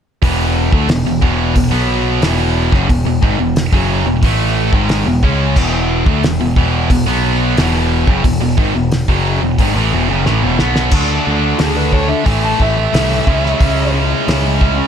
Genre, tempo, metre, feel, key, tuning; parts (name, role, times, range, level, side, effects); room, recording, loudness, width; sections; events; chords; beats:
classic rock; 90 BPM; 4/4; straight; E mixolydian; A4 = 437 Hz
biting overdriven guitar; riff; 0.2-14.9 s; E2 to A4; -19 LUFS; left 11 dB
tight distorted guitar; riff; 0.2-14.9 s; E2 to D4; -18 LUFS; right 11 dB; distortion
growling picked electric bass; bass; 0.2-14.8 s; E1 to D2; -17 LUFS; equal; overdrive
cloth-damped thuddy drum kit; drums; 0.2-14.8 s; crash cymbal, hi-hat, kick drum, snare drum; -17 LUFS; equal
fuzz lead guitar; melody; 11.6-13.9 s; G#4 to A5; -20 LUFS; left 1 dB; distortion
light reverb; -12 LUFS; side -8 dB against mid
0.2-10.9 A section; 10.9-14.9 B section
drum fill 10.3-10.9; lead electric guitar solo 10.9-14.9
0.2 E; 10.9 D; 12.3 A; 13.3 C#m
| 0.23 0.89 1.56 2.23 | 2.90 3.56 4.23 4.90 | 5.57 6.24 6.91 7.58 | 8.25 8.91 9.58 10.25 | 10.92 11.59 12.26 12.93 | 13.60 14.27